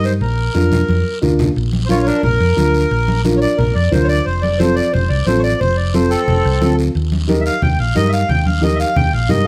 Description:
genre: latin, cumbia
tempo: 178 BPM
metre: 4/4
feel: straight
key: Bb major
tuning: A4 = 440 Hz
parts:
  - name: accordion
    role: melody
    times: 0.0-9.5 s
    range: C4 to G5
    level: -21 LUFS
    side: equal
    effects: none
  - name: dark upright piano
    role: accompaniment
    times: 0.0-9.5 s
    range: C4 to Bb4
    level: -22 LUFS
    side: equal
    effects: none
  - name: hollow-body short-scale fingered electric bass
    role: bass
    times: 0.0-9.5 s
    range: F1 to G2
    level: -19 LUFS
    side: equal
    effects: none
  - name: guiro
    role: percussion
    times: 0.0-9.5 s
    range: none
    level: -34 LUFS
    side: equal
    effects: none
  - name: congas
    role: percussion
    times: 0.6-9.5 s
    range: none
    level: -24 LUFS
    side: equal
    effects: none
room: moderate large studio reverb, RT60 1.1 s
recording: none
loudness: -16 LUFS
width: mono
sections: 0.0-1.6 A section; 1.6-9.5 B section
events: drum fill 0.9-1.6; accordion solo 1.6-9.5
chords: 0.2 Bb; 4.3 F; 7.0 Eb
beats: | 0.21 0.55 0.89 1.23 | 1.56 1.90 2.24 2.57 | 2.91 3.25 3.58 3.92 | 4.26 4.60 4.93 5.27 | 5.61 5.94 6.28 6.61 | 6.95 7.29 7.62 7.96 | 8.29 8.63 8.96 9.30

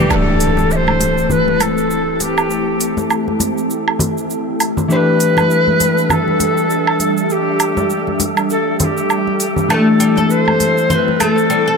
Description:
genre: organic downtempo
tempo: 100 BPM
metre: 4/4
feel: swing 58% on 16ths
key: A minor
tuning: A4 = 440 Hz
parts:
  - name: breathy bright Native American-style cedar flute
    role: melody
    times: 0.0-11.8 s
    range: G4 to E5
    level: -17 LUFS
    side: left 1 dB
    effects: vintage 12-bit sampler grit, tape echo
  - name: mellow electric guitar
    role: accompaniment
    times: 0.0-11.8 s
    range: E3 to B4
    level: -20 LUFS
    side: left 1 dB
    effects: ping-pong delay
  - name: ethereal airy pad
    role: sustained chords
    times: 0.1-11.8 s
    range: G3 to A4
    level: -21 LUFS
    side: equal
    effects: ensemble chorus, built-in reverb
  - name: oud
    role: arpeggios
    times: 0.0-0.1, 9.7-11.8 s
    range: G3 to A4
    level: -17 LUFS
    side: left 2 dB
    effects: ping-pong delay
  - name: wind-like tuned noise texture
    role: texture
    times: 0.0-11.8 s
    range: A3 to A4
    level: -25 LUFS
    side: right 1 dB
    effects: built-in reverb
  - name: electronic woodblock, shaker and hi-hat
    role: drums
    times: 0.1-11.6 s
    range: none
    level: -20 LUFS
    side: right 4 dB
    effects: none
  - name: impact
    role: sound effects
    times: 0.1-2.5 s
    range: none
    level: -22 LUFS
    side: right 1 dB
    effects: none
  - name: congas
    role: percussion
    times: 0.6-11.3 s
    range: none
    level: -22 LUFS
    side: left 2 dB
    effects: none
room: moderate huge ambient reverb, RT60 4.2 s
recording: none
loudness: -13 LUFS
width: side -5 dB against mid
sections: 0.1-11.8 A section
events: impact 0.1-2.5; filter sweep on ambient pad 0.1-11.8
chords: 0.1 Am7; 4.9 G; 9.7 Am7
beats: | 0.10 0.70 1.30 1.90 | 2.50 3.10 3.70 4.30 | 4.90 5.50 6.10 6.70 | 7.30 7.90 8.50 9.10 | 9.70 10.30 10.90 11.50

